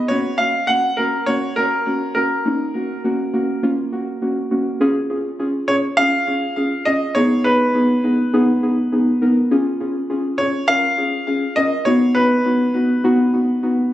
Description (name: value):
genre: pop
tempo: 102 BPM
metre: 4/4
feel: straight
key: unclear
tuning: A4 = 440 Hz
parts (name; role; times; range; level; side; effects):
- bright concert grand piano; melody; 0.0-13.3 s; A#4 to F#5; -19 LUFS; equal; ping-pong delay
- muted felt-like synth keys; accompaniment; 0.1-13.8 s; A#3 to A#4; -18 LUFS; equal; chorus
room: moderate lush hall reverb, RT60 1.6 s, small room ambience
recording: recorded on a phone in the room, studio reverb, compression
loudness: -16 LUFS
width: side -13 dB against mid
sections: 0.0-4.8 A section; 4.8-13.9 B section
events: none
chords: 0.1 F#; 4.8 C#; 7.2 G#m; 9.5 C#6; 11.9 B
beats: | 0.10 0.69 1.28 1.86 | 2.45 3.04 3.63 4.22 | 4.81 5.39 5.98 6.57 | 7.16 7.75 8.34 8.92 | 9.51 10.10 10.69 11.28 | 11.87 12.45 13.04 13.63